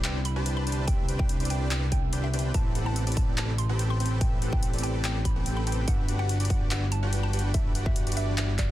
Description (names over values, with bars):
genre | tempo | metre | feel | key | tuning
future bass | 144 BPM | 4/4 | half-time | unclear | A4 = 439 Hz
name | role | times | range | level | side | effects
mallet-like synth pluck | melody | 0.0-8.7 s | D5 to C6 | -38 LUFS | equal | chorus, phaser, sidechain pumping, tape echo
shimmering ambient pad | sustained chords | 0.0-8.7 s | C3 to G4 | -39 LUFS | equal | chorus, built-in reverb, sidechain pumping
dense compressed supersaw | riff | 0.0-8.5 s | C4 to A5 | -34 LUFS | right 1 dB | vintage 12-bit sampler grit, sidechain pumping
fat analog bass | bass | 0.0-8.7 s | G1 to C2 | -28 LUFS | equal | sidechain pumping
big-room dance drum kit | drums | 0.0-8.7 s | handclaps, hi-hat | -34 LUFS | left 1 dB | none
electronic kick drum | drums | 0.9-8.7 s | none | -27 LUFS | equal | none
room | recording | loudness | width
digital ambience | dense, heavily limited modern master | -24 LUFS | side -14 dB against mid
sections
0.0-8.7 A section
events
none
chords
0.0 Cmaj9; 2.5 Am9; 5.9 Em9/G